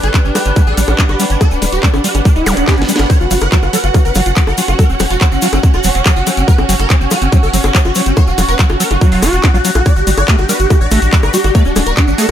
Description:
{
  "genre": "psychedelic trance",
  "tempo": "142 BPM",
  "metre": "4/4",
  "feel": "straight",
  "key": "unclear",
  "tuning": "A4 = 441 Hz",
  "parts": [
    { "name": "swarming rave lead", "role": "melody", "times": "0.0-12.3 s", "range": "C#4 to D5", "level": "-18 LUFS", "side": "equal", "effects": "chorus, phaser, sidechain pumping, tape echo" },
    { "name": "overtone-sweeping drone", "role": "sustained chords", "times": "0.0-12.3 s", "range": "F#4 to B4", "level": "-22 LUFS", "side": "left 1 dB", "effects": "chorus, built-in reverb, phaser, sidechain pumping" },
    { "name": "round analog bass", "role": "bass", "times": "0.0-12.3 s", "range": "D1 to A#1", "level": "-16 LUFS", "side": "equal", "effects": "none" },
    { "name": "garage drum kit", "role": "drums", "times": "0.0-12.3 s", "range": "bongos, handclaps, hi-hat, snare drum", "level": "-18 LUFS", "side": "left 2 dB", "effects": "none" },
    { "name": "egg shaker", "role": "percussion", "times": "0.0-12.3 s", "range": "none", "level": "-25 LUFS", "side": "left 4 dB", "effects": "none" },
    { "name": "rich studio string section", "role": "texture", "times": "0.0-12.3 s", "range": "G3 to G5", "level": "-22 LUFS", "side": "right 5 dB", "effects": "sidechain pumping" },
    { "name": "screaming distorted acid line", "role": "riff", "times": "0.1-12.3 s", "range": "F#3 to G4", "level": "-20 LUFS", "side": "moving between left 4 dB and right 3 dB", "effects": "distortion, chorus, auto-pan, cassette tape, sidechain pumping, tape echo" },
    { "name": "electronic kick drum", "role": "drums", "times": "0.1-12.1 s", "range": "none", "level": "-10 LUFS", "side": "equal", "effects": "none" },
    { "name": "zap", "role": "sound effects", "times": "2.5-2.6 s", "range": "none", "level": "-23 LUFS", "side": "equal", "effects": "none" }
  ],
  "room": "digital ambience",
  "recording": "none",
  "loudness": "-9 LUFS",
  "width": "side -10 dB against mid",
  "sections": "0.0-3.1 A section; 3.1-12.3 B section",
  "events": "drum fill 2.7-3.1; band accent 3.0; drop 3.1-12.3",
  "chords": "0.0 G5; 3.1 F#5; 9.9 G5",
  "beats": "0.14 0.56 0.99 | 1.41 1.83 2.25 2.68 | 3.10 3.52 3.94 4.37 | 4.79 5.21 5.63 6.06 | 6.48 6.90 7.32 7.75 | 8.17 8.59 9.01 9.44 | 9.86 10.28 10.70 11.13 | 11.55 11.97"
}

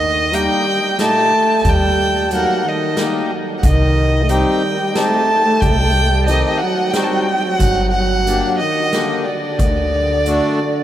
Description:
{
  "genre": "klezmer",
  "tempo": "91 BPM",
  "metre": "3/4",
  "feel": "straight",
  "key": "unclear",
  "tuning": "A4 = 439 Hz",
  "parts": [
    { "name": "warm violin", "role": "melody", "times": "0.0-10.8 s", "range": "D5 to A5", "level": "-18 LUFS", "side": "equal", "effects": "none" },
    { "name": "mellow trombone", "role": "second line", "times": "0.0-10.8 s", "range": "D3 to A3", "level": "-19 LUFS", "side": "right 1 dB", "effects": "slapback echo" },
    { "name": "upright bass", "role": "bass", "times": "0.0-10.4 s", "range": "G1 to Eb2", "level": "-18 LUFS", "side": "equal", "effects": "none" },
    { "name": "accordion", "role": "accompaniment", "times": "0.3-10.6 s", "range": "Bb2 to Bb4", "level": "-24 LUFS", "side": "left 2 dB", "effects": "none" },
    { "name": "street-band drum kit", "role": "drums", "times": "0.3-10.4 s", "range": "hi-hat, kick drum, snare drum", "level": "-22 LUFS", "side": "equal", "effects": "none" }
  ],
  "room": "wet huge ambient reverb, RT60 7.5 s",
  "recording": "in a vast, echoing space",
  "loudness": "-14 LUFS",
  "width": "side -12 dB against mid",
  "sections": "0.0-10.8 A section",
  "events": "none",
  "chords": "0.0 Eb; 3.6 Cm; 7.6 Gm; 9.6 D",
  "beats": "0.34 0.99 | 1.65 2.31 2.97 | 3.63 4.29 4.95 | 5.62 6.28 6.94 | 7.60 8.27 8.93 | 9.59 10.26"
}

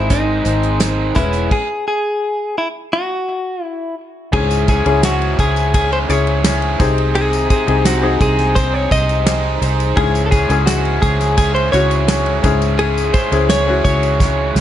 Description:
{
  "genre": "piano-driven pop",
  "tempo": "85 BPM",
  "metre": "4/4",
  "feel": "straight",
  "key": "C# harmonic minor from 4.3 s",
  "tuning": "A4 = 441 Hz",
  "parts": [
    { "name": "direct-recorded clean electric guitar", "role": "melody", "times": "0.0-14.5 s", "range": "D#4 to D#5", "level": "-19 LUFS", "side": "left 1 dB", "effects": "tape echo" },
    { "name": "clear upright piano", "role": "accompaniment", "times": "0.0-14.6 s", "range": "G#2 to D#5", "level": "-20 LUFS", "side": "left 5 dB", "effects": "none" },
    { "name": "raw garage guitar", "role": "riff", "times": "0.0-14.6 s", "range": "G#2 to C#5", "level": "-22 LUFS", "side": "right 5 dB", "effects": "overdrive" },
    { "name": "vintage muted fingered electric bass", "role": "bass", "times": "0.0-14.6 s", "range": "E1 to C#2", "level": "-18 LUFS", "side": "equal", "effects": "none" },
    { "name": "damped 70s drum kit", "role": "drums", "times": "0.1-14.6 s", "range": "crash cymbal, handclaps, hi-hat, kick drum, ride cymbal, snare drum", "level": "-19 LUFS", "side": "right 1 dB", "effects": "none" },
    { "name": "tambourine", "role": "percussion", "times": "0.1-14.6 s", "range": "none", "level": "-33 LUFS", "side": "left 10 dB", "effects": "none" }
  ],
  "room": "light reverb, small room ambience",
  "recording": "nothing above 11.0 kHz",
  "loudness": "-13 LUFS",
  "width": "side -11 dB against mid",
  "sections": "0.0-4.3 A section; 4.3-14.6 B section",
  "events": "stop 1.5-4.3; drum fill 14.2-14.6",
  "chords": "0.0 G#; 1.2 E6; 2.9 N.C.; 4.3 C#m; 6.8 G#/B#; 10.0 C#m",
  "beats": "0.10 0.81 | 1.51 2.22 2.92 3.63 | 4.33 5.04 5.74 6.45 | 7.15 7.86 8.56 9.27 | 9.97 10.68 11.38 12.09 | 12.79 13.50 14.20"
}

